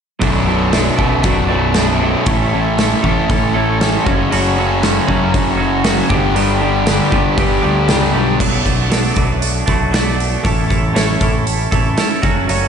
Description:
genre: quiet-loud alternative rock.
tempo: 117 BPM.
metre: 4/4.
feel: straight.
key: B minor.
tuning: A4 = 439 Hz.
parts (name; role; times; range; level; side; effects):
twelve-string electric guitar; arpeggios; 0.2-12.7 s; B1 to A4; -18 LUFS; right 3 dB; wide subtle chorus.
fuzz guitar; riff; 0.2-8.4 s; B1 to A3; -16 LUFS; left 1 dB; distortion.
growling picked electric bass; bass; 0.2-12.7 s; B0 to F#2; -20 LUFS; equal; overdrive.
big rock drum kit; drums; 0.2-12.6 s; crash cymbal, hi-hat, kick drum, snare drum; -18 LUFS; equal; none.
room: moderate lush hall reverb, RT60 1.9 s, studio reverb.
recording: big arena sound, nothing above 10.6 kHz.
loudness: -12 LUFS.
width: side -7 dB against mid.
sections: 0.2-8.4 A section; 8.4-12.7 B section.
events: none.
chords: 0.2 Bm7; 2.3 A; 4.1 F#m; 6.1 G; 8.4 Bm7; 10.4 A.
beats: | 0.22 0.73 1.24 1.75 | 2.27 2.78 3.29 3.80 | 4.31 4.82 5.33 5.85 | 6.36 6.87 7.38 7.89 | 8.40 8.91 9.42 9.94 | 10.45 10.96 11.47 11.98 | 12.49.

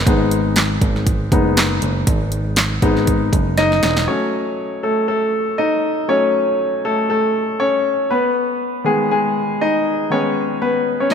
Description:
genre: piano-driven pop.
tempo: 120 BPM.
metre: 4/4.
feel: swing 56% on 16ths.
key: unclear.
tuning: A4 = 440 Hz.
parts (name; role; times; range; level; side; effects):
clear concert grand piano; accompaniment; 0.0-11.1 s; D#3 to D#5; -17 LUFS; left 2 dB; none.
picked electric bass; bass; 0.0-4.1 s; E1 to G#1; -20 LUFS; right 1 dB; none.
deep house drum kit; drums; 0.1-4.1, 11.1 s; handclaps, hi-hat, kick drum, snare drum; -18 LUFS; right 1 dB; none.
room: moderate concert hall reverb, RT60 2.5 s.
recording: none.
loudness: -15 LUFS.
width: side -7 dB against mid.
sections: 0.1-4.1 A section; 4.1-11.1 B section.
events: grand piano solo 0.1-4.1, 4.1-11.1; drum fill 3.6-4.1.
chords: 0.1 G#m; 4.1 F#m; 8.1 G#m.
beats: | 0.07 0.57 1.07 1.57 | 2.07 2.57 3.08 3.58 | 4.08 4.58 5.08 5.59 | 6.09 6.59 7.09 7.60 | 8.10 8.60 9.10 9.61 | 10.11 10.61 11.11.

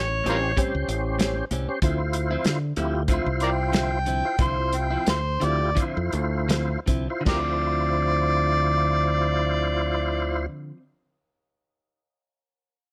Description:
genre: straight-eighth soul blues.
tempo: 77-96 BPM.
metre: 4/4.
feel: swing 56% on 16ths.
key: D minor.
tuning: A4 = 440 Hz.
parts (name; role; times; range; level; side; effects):
overdriven harmonica; melody; 0.0-10.5 s; F4 to G5; -28 LUFS; equal; none.
tonewheel organ; accompaniment; 0.0-10.5 s; C#4 to B#4; -31 LUFS; equal; slow rotary speaker, overdrive, chorus vibrato.
fingered electric bass; bass; 0.0-10.5 s; A1 to D3; -29 LUFS; equal; none.
direct-recorded clean electric guitar; stabs; 0.2-10.8 s; A2 to E4; -34 LUFS; equal; none.
warm soul drum kit; drums; 0.3-7.5 s; crash cymbal, hi-hat, kick drum, snare drum; -28 LUFS; equal; none.
room: light reverb.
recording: none.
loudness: -24 LUFS.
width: mono.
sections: 0.0-7.3 A section; 7.3-10.4 B section.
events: slowing down 1.8-7.3.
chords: 0.0 A7#9; 1.8 Dm9.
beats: 0.57 1.20 | 1.82 2.45 3.09 3.73 | 4.39 5.07 5.77 6.50 | 7.27 8.05 8.83 9.61.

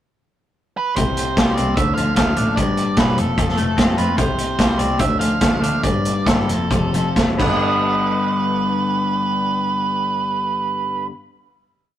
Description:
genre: indie rock.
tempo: 126-149 BPM.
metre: 4/4.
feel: straight.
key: G mixolydian.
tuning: A4 = 440 Hz.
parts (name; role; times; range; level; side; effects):
octave-fuzz lead guitar; melody; 0.8-11.1 s; A4 to F5; -22 LUFS; right 4 dB; distortion.
twangy electric guitar; riff; 1.0-11.1 s; F2 to F4; -22 LUFS; left 3 dB; none.
dark double bass; bass; 1.0-11.1 s; E1 to D3; -24 LUFS; equal; none.
vintage drum kit; drums; 1.0-7.5 s; crash cymbal, hi-hat, kick drum, snare drum; -19 LUFS; equal; none.
room: light reverb.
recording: rough rehearsal-room recording, tube saturation.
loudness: -16 LUFS.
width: side -11 dB against mid.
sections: 0.0-1.0 pickup bar; 1.0-7.6 interlude; 7.6-11.4 final hit.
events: slowing down 4.2-7.6.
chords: 0.0 N.C.; 1.0 C5; 1.8 Dm; 2.6 G5; 3.2 F; 4.2 C5; 5.0 Dm; 5.8 G5; 6.5 F; 7.4 G.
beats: 0.16 0.57 | 0.97 1.37 1.77 2.17 | 2.58 2.98 3.38 3.78 | 4.19 4.59 5.00 5.41 | 5.83 6.26 6.71 7.16 | 7.63 8.11 8.58 9.06 | 9.54 10.01 10.49 10.96.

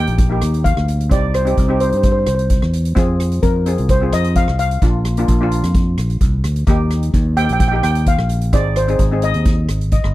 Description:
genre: calypso.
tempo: 130 BPM.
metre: 4/4.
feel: straight.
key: Eb major.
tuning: A4 = 441 Hz.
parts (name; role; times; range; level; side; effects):
steel pan; melody; 0.0-10.1 s; Bb4 to G5; -20 LUFS; equal; none.
steel pan; accompaniment; 0.0-10.1 s; Bb3 to Eb5; -23 LUFS; left 1 dB; none.
fingered electric bass; bass; 0.0-10.1 s; G1 to G2; -17 LUFS; equal; none.
street-band drum kit; drums; 0.1-10.1 s; hi-hat, kick drum, rim click; -18 LUFS; equal; none.
room: little or no reverb.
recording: dry, close 1970s-style studio recording.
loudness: -14 LUFS.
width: side -16 dB against mid.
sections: 0.0-10.1 A section.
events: steel pan fill 9.7-10.1.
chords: 0.0 Ebadd9; 1.1 Cm; 3.0 Fm; 4.8 Bb; 6.7 Ebadd9; 8.5 Ab.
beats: 0.19 0.65 | 1.12 1.58 2.04 2.51 | 2.97 3.43 3.90 4.36 | 4.82 5.29 5.75 6.21 | 6.68 7.14 7.60 8.06 | 8.53 8.99 9.46 9.92.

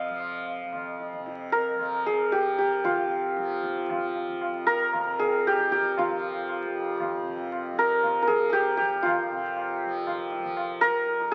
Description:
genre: indian classical, Hindustani.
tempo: 116 BPM.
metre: 3/4.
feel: straight.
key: F raga bhimpalasi.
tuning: A4 = 440 Hz.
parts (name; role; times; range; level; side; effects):
santur; melody; 0.0-11.3 s; F4 to F5; -27 LUFS; equal; none.
tanpura; drone; 0.0-11.3 s; F2 to F3; -40 LUFS; equal; none.
tabla; percussion; 0.2-11.3 s; none; -38 LUFS; equal; none.
room: moderate club reverb, RT60 0.9 s.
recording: very old 78 rpm record, vinyl crackle.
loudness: -27 LUFS.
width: mono.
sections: 0.0-2.8 A section; 2.8-11.3 B section.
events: speeding up 0.0-11.3.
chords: none.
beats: 0.20 0.73 | 1.26 1.79 2.32 | 2.84 3.37 3.89 | 4.41 4.93 5.45 | 5.97 6.49 7.00 | 7.51 8.03 8.54 | 9.05 9.56 10.06 | 10.57 11.07.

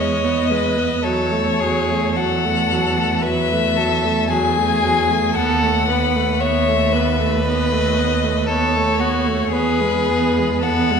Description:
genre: classical, slow romantic movement for string quartet.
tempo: 57 BPM.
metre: 4/4.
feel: rubato.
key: unclear.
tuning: A4 = 440 Hz.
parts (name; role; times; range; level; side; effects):
rich violin; melody; 0.0-11.0 s; B4 to G#5; -21 LUFS; left 8 dB; none.
rich violin; second line; 0.0-11.0 s; F#4 to C#5; -22 LUFS; left 1 dB; none.
clear viola; accompaniment; 0.0-11.0 s; F#3 to B3; -22 LUFS; right 3 dB; none.
rich cello; bass; 0.0-11.0 s; D#2 to E2; -22 LUFS; right 4 dB; none.
room: wet concert hall reverb, RT60 1.9 s.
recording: minimal, uncompressed stereo recording.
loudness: -16 LUFS.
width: side -6 dB against mid.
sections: 0.0-11.0 A section.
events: none.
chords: 0.0 E; 1.0 F#m7/E; 5.4 B7/D#; 9.5 E.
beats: | 1.02 2.16 3.23 4.29 | 5.35 6.41 7.45 8.49 | 9.53 10.63.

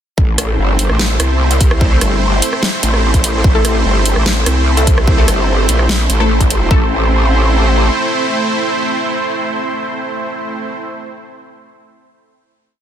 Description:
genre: heavy wobble dubstep.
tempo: 147 BPM.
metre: 4/4.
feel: half-time.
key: A minor.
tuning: A4 = 440 Hz.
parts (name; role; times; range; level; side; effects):
supersaw pad; sustained chords; 0.2-10.7 s; A3 to C5; -18 LUFS; right 2 dB; vintage 12-bit sampler grit, sidechain pumping.
growl bass; bass; 0.2-7.9 s; G1 to C2; -14 LUFS; equal; chorus, overdrive.
electronic kick drum; drums; 0.2-6.8 s; none; -13 LUFS; equal; overdrive.
dubstep drum kit; drums; 0.4-6.6 s; hi-hat, rim click, snare drum; -18 LUFS; equal; none.
orchestra-hit-like synth stab; stabs; 3.5-11.1 s; A3 to A4; -21 LUFS; left 2 dB; built-in reverb, tape echo.
room: little or no reverb.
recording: dense, heavily limited modern master.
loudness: -11 LUFS.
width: side -9 dB against mid.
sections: 0.2-6.7 drop; 6.7-10.0 final chord.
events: drop 0.2-6.7.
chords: 0.2 Am.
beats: | 0.18 0.58 0.99 1.40 | 1.81 2.22 2.63 3.03 | 3.44 3.85 4.26 4.67 | 5.08 5.48 5.89 6.30 | 6.71 7.12 7.52 7.93 | 8.34 8.75 9.16 9.56.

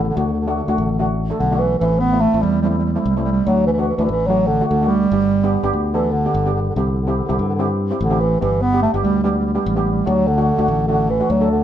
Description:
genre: calypso.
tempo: 146 BPM.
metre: 4/4.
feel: straight.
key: G major.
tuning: A4 = 442 Hz.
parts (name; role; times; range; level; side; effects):
mellow bass clarinet; melody; 0.0-11.6 s; D3 to B3; -18 LUFS; right 2 dB; none.
steel pan; accompaniment; 0.0-11.6 s; A3 to A4; -23 LUFS; right 1 dB; none.
fingered electric bass; bass; 0.0-11.6 s; G1 to G2; -20 LUFS; left 1 dB; none.
room: light reverb.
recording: band playing live in one room.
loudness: -15 LUFS.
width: side -10 dB against mid.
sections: 0.0-11.6 A section.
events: none.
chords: 0.2 D; 1.8 Am; 3.5 D; 5.1 G; 6.8 C; 8.4 Gadd9; 10.1 D.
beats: | 0.16 0.57 0.99 1.40 | 1.81 2.23 2.64 3.05 | 3.47 3.88 4.29 4.70 | 5.12 5.53 5.94 6.35 | 6.76 7.18 7.59 8.00 | 8.41 8.82 9.24 9.65 | 10.06 10.47 10.89 11.30.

